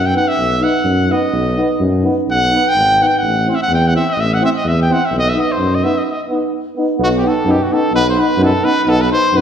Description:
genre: balkan folk, Balkan brass band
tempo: 128 BPM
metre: 2/4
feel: swing 54% on 16ths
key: B phrygian dominant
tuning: A4 = 441 Hz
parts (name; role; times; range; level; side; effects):
- bright trumpet; melody; 0.0-9.4 s; F#4 to G5; -16 LUFS; left 1 dB; none
- warm tuba; bass; 0.0-9.4 s; G#1 to F#2; -17 LUFS; equal; none
- clear trombone; accompaniment; 0.1-9.4 s; B3 to C4; -22 LUFS; right 2 dB; none
- warm euphonium; accompaniment; 0.2-9.4 s; D#4 to E4; -20 LUFS; equal; none
room: wet recital hall reverb, RT60 1.5 s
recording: heard from further back in the room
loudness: -12 LUFS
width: side -8 dB against mid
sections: 0.0-7.0 A section; 7.0-9.4 B section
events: trumpet solo 0.0-7.0; break 6.1-7.0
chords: 0.0 B; 3.2 Am; 5.1 B

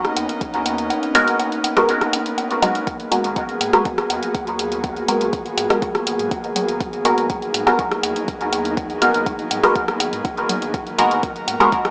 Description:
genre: dub techno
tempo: 122 BPM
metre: 4/4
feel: straight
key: G# minor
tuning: A4 = 438 Hz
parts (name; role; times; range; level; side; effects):
- airy breathy pad; sustained chords; 0.0-11.9 s; A#3 to A#4; -24 LUFS; equal; chorus, sidechain pumping
- soft vintage rhythm box; drums; 0.0-11.9 s; hi-hat, rim click; -23 LUFS; equal; none
- flickering grainy texture; texture; 0.1-11.9 s; F#3 to F#4; -31 LUFS; equal; built-in reverb, sidechain pumping
- warm sub bass; bass; 0.2-11.6 s; D#1 to G#2; -40 LUFS; equal; tube saturation, sidechain pumping
- woodblock and congas; percussion; 0.2-11.8 s; none; -29 LUFS; equal; sidechain pumping on perc, dub echo
- electronic kick drum; drums; 0.4-11.8 s; none; -27 LUFS; equal; none
- filtered dub chord stab; stabs; 1.1-11.7 s; G#3 to A#4; -19 LUFS; equal; phaser, sidechain pumping, dub echo
room: light reverb, digital ambience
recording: dry, gritty hardware recording, small speaker sound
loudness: -17 LUFS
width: side -38 dB against mid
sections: 0.0-11.9 A section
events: none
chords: 0.0 G#m9

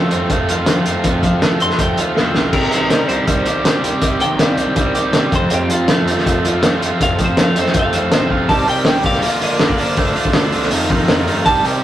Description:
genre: indie rock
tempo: 162 BPM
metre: 4/4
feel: straight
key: unclear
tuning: A4 = 440 Hz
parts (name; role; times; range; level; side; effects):
- twelve-string electric guitar; melody; 0.0-11.8 s; F4 to C6; -21 LUFS; equal; none
- bright tonewheel organ; sustained chords; 0.0-11.8 s; G4 to Eb6; -32 LUFS; left 1 dB; none
- cranked stack guitar; riff; 0.0-11.8 s; F2 to G4; -23 LUFS; left 3 dB; overdrive
- overdriven electric guitar; riff; 0.0-11.8 s; F2 to G4; -19 LUFS; right 3 dB; none
- growling picked electric bass; bass; 0.0-11.8 s; A1 to F3; -24 LUFS; left 1 dB; overdrive
- cloth-damped thuddy drum kit; drums; 0.1-11.7 s; crash cymbal, hi-hat, kick drum, snare drum; -17 LUFS; equal; none
room: moderate stone room reverb, RT60 1.1 s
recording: rough rehearsal-room recording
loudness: -13 LUFS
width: side -12 dB against mid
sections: 0.0-8.5 A section; 8.5-11.8 B section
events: drum fill 2.2-2.5, 8.3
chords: 0.0 F; 2.5 Cm; 5.3 F; 8.5 Cm7; 9.2 Bbmaj7/D; 10.0 Dm7; 10.7 F7sus4

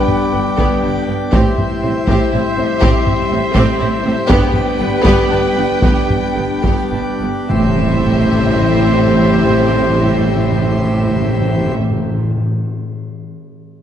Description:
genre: cinematic, epic orchestral film score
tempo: 69-82 BPM (dotted quarters)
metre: 6/8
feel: straight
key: A minor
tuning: A4 = 440 Hz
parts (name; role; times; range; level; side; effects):
- dark symphonic violin section; melody; 0.0-11.7 s; E5 to G5; -25 LUFS; left 2 dB; none
- warm symphonic violin section; second line; 0.0-11.7 s; B3 to G4; -25 LUFS; left 1 dB; none
- warm symphonic viola section; accompaniment; 0.0-11.7 s; B3 to C4; -24 LUFS; right 1 dB; none
- dark French horn section; sustained chords; 0.0-11.7 s; G3 to E4; -22 LUFS; left 5 dB; none
- pipe organ, plenum; sustained chords; 0.0-11.7 s; B3 to D5; -22 LUFS; left 1 dB; none
- warm trumpet section; stabs; 0.0-11.7 s; B4 to C5; -23 LUFS; right 2 dB; none
- solo taiko drums; drums; 0.1-7.2 s; none; -18 LUFS; equal; none
- clear symphonic cello section; bass; 0.3-11.7 s; G2 to A2; -21 LUFS; right 2 dB; none
- clear symphonic double bass section; bass; 0.3-11.7 s; G1 to A1; -20 LUFS; right 3 dB; none
- timpani; percussion; 7.5-12.4 s; A2; -18 LUFS; left 1 dB; none
- impact; sound effects; 7.5-9.2 s; none; -25 LUFS; equal; none
room: wet concert hall reverb, RT60 2.4 s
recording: dark, warm production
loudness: -12 LUFS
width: side -9 dB against mid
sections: 0.0-7.5 A section; 7.5-11.0 B section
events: slowing down 3.6-7.5; impact 7.5-9.2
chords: 0.0 G; 1.3 Am7; 4.3 G; 7.5 Am7

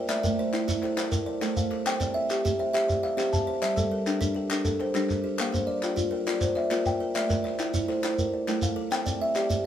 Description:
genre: southern african traditional, mbira-style interlocking cycle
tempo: 136 BPM (dotted quarters)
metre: 12/8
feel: straight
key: C mixolydian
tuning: A4 = 441 Hz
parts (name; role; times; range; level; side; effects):
- buzzing kalimba; arpeggios; 0.0-9.7 s; G3 to E5; -29 LUFS; right 3 dB; none
- kalimba; arpeggios; 0.0-9.6 s; G3 to A5; -28 LUFS; left 3 dB; none
- group handclap; percussion; 0.1-9.5 s; none; -36 LUFS; left 2 dB; none
- shekere; percussion; 0.1-9.6 s; none; -31 LUFS; right 1 dB; none
room: wet studio reverb, RT60 0.5 s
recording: band playing live in one room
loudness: -24 LUFS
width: side -10 dB against mid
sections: 0.0-8.9 A section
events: none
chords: 0.1 Am; 1.9 C; 3.6 Gm; 5.4 Bb; 7.2 Am; 8.9 C

